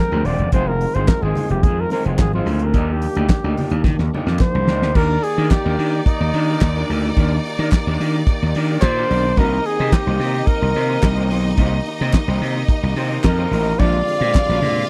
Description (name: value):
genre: disco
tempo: 109 BPM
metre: 4/4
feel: straight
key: Eb major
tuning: A4 = 440 Hz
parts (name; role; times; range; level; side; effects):
- warm flugelhorn; melody; 0.0-14.9 s; Eb4 to D5; -24 LUFS; equal; none
- electric guitar through a small old amp; accompaniment; 0.0-14.8 s; Ab3 to D5; -30 LUFS; equal; none
- tonewheel organ; sustained chords; 0.0-14.9 s; D3 to G5; -31 LUFS; equal; overdrive, fast rotary speaker
- gritty slap bass; bass; 0.1-14.8 s; Eb1 to Eb3; -22 LUFS; equal; overdrive
- congas; percussion; 0.1-4.7, 13.8-14.8 s; none; -30 LUFS; equal; none
- damped 70s drum kit; drums; 0.3-14.8 s; crash cymbal, handclaps, hi-hat, kick drum, snare drum; -18 LUFS; equal; none
- group handclap; percussion; 1.1-14.5 s; none; -36 LUFS; equal; none
- bright studio string section; second line; 5.0-14.9 s; Eb4 to F5; -30 LUFS; equal; none
room: little or no reverb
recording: dry, close 1970s-style studio recording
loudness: -18 LUFS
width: mono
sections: 0.0-5.0 A section; 5.0-14.9 B section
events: flugelhorn solo 0.0-5.0; drum fill 3.9-5.0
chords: 0.0 Bb13; 0.5 Fm7; 2.7 Ebmaj7; 9.4 Cm7; 13.8 Bb13